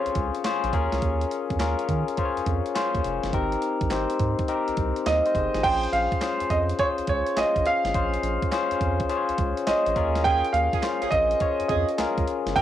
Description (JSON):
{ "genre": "R&B, new jack swing", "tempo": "104 BPM", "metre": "4/4", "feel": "swing 66% on 16ths", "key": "Bb dorian", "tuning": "A4 = 440 Hz", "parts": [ { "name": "barky tine electric piano", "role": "accompaniment", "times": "0.0-12.6 s", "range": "C4 to F5", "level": "-26 LUFS", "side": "left 5 dB", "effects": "cassette tape" }, { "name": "round analog bass", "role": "bass", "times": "0.1-12.6 s", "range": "F1 to Eb3", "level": "-29 LUFS", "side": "right 2 dB", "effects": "none" }, { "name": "clean 12-bit digital drum machine", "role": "drums", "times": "0.1-12.6 s", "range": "crash cymbal, handclaps, hi-hat, kick drum, snare drum", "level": "-30 LUFS", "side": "right 2 dB", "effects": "cassette tape" }, { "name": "clear grand piano", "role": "melody", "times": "5.1-12.6 s", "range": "Db5 to G5", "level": "-24 LUFS", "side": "right 2 dB", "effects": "cassette tape" }, { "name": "warm horn section", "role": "stabs", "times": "10.2-12.6 s", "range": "C4 to Bb4", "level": "-33 LUFS", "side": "right 11 dB", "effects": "cassette tape" } ], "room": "moderate booth ambience, RT60 0.2 s", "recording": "home recording on cassette", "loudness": "-22 LUFS", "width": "side -11 dB against mid", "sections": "0.0-5.6 A section; 5.6-12.6 B section", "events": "none", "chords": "0.0 Bbm9; 0.7 Eb9sus4; 3.3 Abmaj9; 5.6 Bbm9; 10.0 Eb9sus4", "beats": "0.45 | 1.02 1.60 2.18 2.75 | 3.33 3.91 4.48 5.06 | 5.64 6.21 6.79 7.37 | 7.95 8.52 9.10 9.68 | 10.25 10.83 11.41 11.98 | 12.56" }